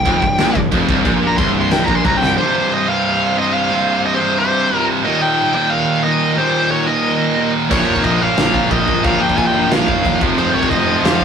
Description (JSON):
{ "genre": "heavy metal", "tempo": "180 BPM", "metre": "4/4", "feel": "straight", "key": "C phrygian", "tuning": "A4 = 439 Hz", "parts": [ { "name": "high-gain lead guitar", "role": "melody", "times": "0.0-11.2 s", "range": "C5 to C6", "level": "-18 LUFS", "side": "left 1 dB", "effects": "distortion" }, { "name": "distorted electric guitar", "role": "riff", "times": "0.0-2.4, 7.7-11.2 s", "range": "C2 to Bb3", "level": "-22 LUFS", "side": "left 2 dB", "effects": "overdrive" }, { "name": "tight distorted guitar", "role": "riff", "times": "0.0-11.2 s", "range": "C2 to Bb3", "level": "-22 LUFS", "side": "left 7 dB", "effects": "distortion" }, { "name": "fuzz picked electric bass", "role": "bass", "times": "0.0-2.4, 7.7-11.2 s", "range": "C1 to C2", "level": "-22 LUFS", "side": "left 1 dB", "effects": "overdrive" }, { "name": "scooped high-gain guitar", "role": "riff", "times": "0.1-11.2 s", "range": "C2 to Bb3", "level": "-19 LUFS", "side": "right 5 dB", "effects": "distortion" }, { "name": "big rock drum kit", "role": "drums", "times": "0.1-2.3, 7.7-11.2 s", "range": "china cymbal, crash cymbal, kick drum, snare drum", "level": "-19 LUFS", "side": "right 1 dB", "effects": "none" }, { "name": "high-gain lead guitar", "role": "second line", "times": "2.4-11.2 s", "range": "G4 to F5", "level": "-27 LUFS", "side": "right 2 dB", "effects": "distortion" } ], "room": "moderate studio reverb, RT60 0.6 s", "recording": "rough rehearsal-room recording, tube saturation", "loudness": "-13 LUFS", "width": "side -7 dB against mid", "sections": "0.0-2.4 A section; 2.4-11.2 B section", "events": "lead electric guitar solo 0.0-2.4; drum fill 2.2", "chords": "0.0 C5; 5.0 Eb; 7.7 Bbm; 10.2 F5", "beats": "0.06 0.39 0.72 | 1.05 1.39 1.72 2.05 | 2.38 2.71 3.05 3.38 | 3.71 4.04 4.38 4.71 | 5.04 5.38 5.71 6.04 | 6.38 6.71 7.04 7.38 | 7.71 8.04 8.38 8.71 | 9.04 9.38 9.71 10.04 | 10.38 10.71 11.04" }